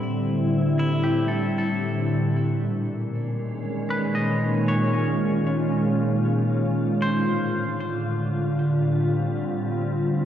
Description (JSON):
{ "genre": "ambient", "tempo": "77 BPM", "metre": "3/4", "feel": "straight", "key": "unclear", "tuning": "A4 = 440 Hz", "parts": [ { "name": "glassy FM pad", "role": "sustained chords", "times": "0.0-10.2 s", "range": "A2 to F4", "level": "-22 LUFS", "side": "equal", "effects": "ensemble chorus, built-in reverb" }, { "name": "clean electric guitar", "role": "arpeggios", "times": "0.0-7.9 s", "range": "E4 to D#5", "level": "-32 LUFS", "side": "equal", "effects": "ping-pong delay" } ], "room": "wet lush hall reverb, RT60 3.1 s", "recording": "worn, warbling old tape, cassette tape, warbly pitch drift", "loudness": "-21 LUFS", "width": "side -10 dB against mid", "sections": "0.0-10.2 A section", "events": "fade-in on clean electric guitar 0.0-10.2", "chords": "0.0 Gsus4; 2.4 Bmaj7; 7.0 F69/A", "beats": "| 0.01 0.79 1.57 | 2.35 3.13 3.91 | 4.69 5.47 6.25 | 7.03 7.80 8.58 | 9.36 10.14" }